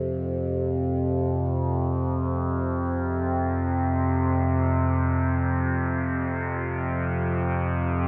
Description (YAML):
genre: dark ambient drone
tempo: free time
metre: none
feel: none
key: unclear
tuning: A4 = 440 Hz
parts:
  - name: overtone-sweeping drone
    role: drone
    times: 0.0-8.1 s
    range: F2 to C3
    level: -26 LUFS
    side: equal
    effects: chorus, built-in reverb
  - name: deep dark ambient pad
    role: sustained chords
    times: 7.2-8.1 s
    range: F4 to G5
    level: -39 LUFS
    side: equal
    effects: none
room: wet cathedral reverb, RT60 6.4 s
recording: none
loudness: -26 LUFS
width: mono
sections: 0.0-8.1 A section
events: none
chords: 0.0 N.C.; 6.0 F5